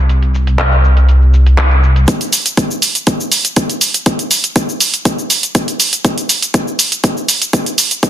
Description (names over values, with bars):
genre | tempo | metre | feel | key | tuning
progressive house | 121 BPM | 4/4 | straight | unclear | A4 = 439 Hz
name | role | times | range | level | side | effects
dark detuned saw bass | bass | 0.0-2.1 s | C2 | -8 LUFS | equal | sidechain pumping
house drum kit | drums | 0.1-8.1 s | cabasa, handclaps, hi-hat | -14 LUFS | right 2 dB | sidechain pumping on hats, low-pass filter on hats, sidechain pumping on perc, low-pass filter on perc, soft clipping on snare, low-pass filter on snare, low-pass filter on room
electronic kick drum | drums | 2.1-8.1 s | none | -15 LUFS | equal | high-pass filter on kick, high-pass filter on room
room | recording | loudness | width
little or no reverb | dense, heavily limited modern master | -10 LUFS | side -11 dB against mid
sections
0.0-2.1 A section; 2.1-8.1 B section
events
build-up 2.1-8.1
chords
none